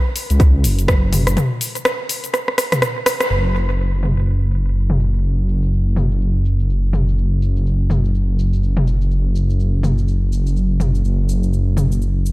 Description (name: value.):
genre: afro house.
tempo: 124 BPM.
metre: 4/4.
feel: swing 59% on 16ths.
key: unclear.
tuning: A4 = 441 Hz.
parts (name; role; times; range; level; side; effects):
house drum kit; drums; 0.2-12.3 s; hi-hat, rim click, shaker, toms; -20 LUFS; equal; low-pass filter on perc, studio reverb, low-pass filter on snare, low-pass filter on hats, low-pass filter on toms, tape echo.
dark detuned saw bass; bass; 0.3-12.3 s; F#1 to C#2; -16 LUFS; equal; sidechain pumping.
electronic kick drum; drums; 0.4-1.0 s; none; -14 LUFS; equal; studio reverb.
room: little or no reverb.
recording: echo-heavy mix.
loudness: -15 LUFS.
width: side -20 dB against mid.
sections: 0.0-3.3 A section; 3.3-12.3 B section.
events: break 1.4-3.3; drum fill 2.3-3.3; band accent 3.2.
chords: none.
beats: 0.40 0.88 | 1.37 1.85 2.34 2.82 | 3.30 3.79 4.27 4.75 | 5.24 5.72 6.21 6.69 | 7.17 7.66 8.14 8.63 | 9.11 9.59 10.08 10.56 | 11.04 11.53 12.01.